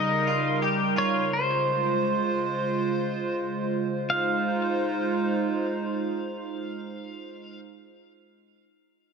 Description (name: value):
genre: dream pop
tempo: free time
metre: none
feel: none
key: F minor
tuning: A4 = 440 Hz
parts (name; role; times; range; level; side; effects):
- pedal steel guitar; melody; 0.0-7.6 s; C5 to F5; -29 LUFS; equal; ping-pong delay
- hollow soft pad; sustained chords; 0.0-7.6 s; Db3 to C5; -27 LUFS; right 2 dB; chorus
- electric guitar at the edge of break-up; arpeggios; 0.0-1.3 s; Eb4 to G4; -29 LUFS; left 3 dB; analog chorus, ping-pong delay
room: moderate plate reverb, RT60 2.9 s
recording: none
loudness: -24 LUFS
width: side -5 dB against mid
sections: 0.0-4.1 A section; 4.1-6.8 B section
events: none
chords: 0.0 Eb7; 1.3 Dbmaj7; 4.1 Fm7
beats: free time